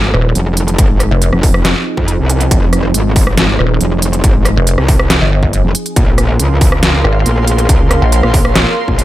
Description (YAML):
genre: heavy wobble dubstep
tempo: 139 BPM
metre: 4/4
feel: half-time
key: F minor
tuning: A4 = 440 Hz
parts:
  - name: evolving wavetable pad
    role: sustained chords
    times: 0.3-9.0 s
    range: F3 to Db5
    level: -22 LUFS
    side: right 1 dB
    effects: chorus, built-in reverb, sidechain pumping
  - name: metallic wobble bass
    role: bass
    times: 0.0-9.0 s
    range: F1 to F2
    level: -13 LUFS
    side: equal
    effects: distortion, chorus, overdrive
  - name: sub drop and zap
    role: sound effects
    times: 2.3-2.4 s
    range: none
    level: -28 LUFS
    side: equal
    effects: none
  - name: pulsing pluck wobble bass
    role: bass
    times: 0.1-8.2 s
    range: Eb1 to Bb1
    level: -11 LUFS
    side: equal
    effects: chorus, overdrive
  - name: dubstep drum kit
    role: drums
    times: 0.1-9.0 s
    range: hi-hat, rim click, snare drum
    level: -15 LUFS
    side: equal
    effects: studio reverb
  - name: electronic kick drum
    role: drums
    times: 0.8-9.0 s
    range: none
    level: -12 LUFS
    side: equal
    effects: distortion, studio reverb
  - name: airy breathy pad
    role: texture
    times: 6.0-9.0 s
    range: Bb4 to C6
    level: -20 LUFS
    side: right 2 dB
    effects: chorus, sidechain pumping
room: little or no reverb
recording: none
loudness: -9 LUFS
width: side -15 dB against mid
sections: 0.0-9.0 A section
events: impact 0.0-0.8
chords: 0.0 Fm7; 6.0 Bbm7